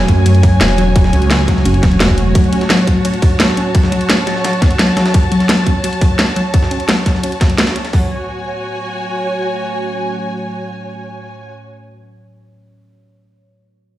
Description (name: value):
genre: dark technical drum and bass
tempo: 172 BPM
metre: 4/4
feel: straight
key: F# minor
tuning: A4 = 440 Hz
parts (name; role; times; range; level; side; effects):
- deep dark ambient pad; sustained chords; 0.0-11.5 s; A3 to C#5; -24 LUFS; equal; chorus, built-in reverb, sidechain pumping
- phased detuned saw bass; bass; 0.0-2.3 s; E1 to F#2; -13 LUFS; equal; phaser, overdrive, sidechain pumping
- breakbeat sampler-style drum kit; drums; 0.0-7.9 s; hi-hat, ride cymbal, snare drum; -26 LUFS; right 1 dB; high-pass filter on cymbals, studio reverb, high-pass filter on snare, high-pass filter on hats
- dark studio string section; texture; 0.0-11.5 s; F#4 to A5; -21 LUFS; right 1 dB; sidechain pumping
- wide unison pluck; arpeggios; 0.1-8.1 s; F#3 to F#4; -18 LUFS; left 1 dB; sidechain pumping, dub echo
- drum and bass drum kit; drums; 0.1-8.0 s; hi-hat, kick drum; -12 LUFS; equal; overdrive, studio reverb
- drum and bass drum kit; drums; 0.1-7.8 s; hi-hat, snare drum; -16 LUFS; equal; overdrive, studio reverb
room: light reverb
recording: played on a big sound system in a bare room, stone room reverb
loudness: -11 LUFS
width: side -14 dB against mid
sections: 0.0-7.9 A section; 7.9-10.7 B section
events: filter sweep on ambient pad 0.0-7.9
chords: 0.0 F#m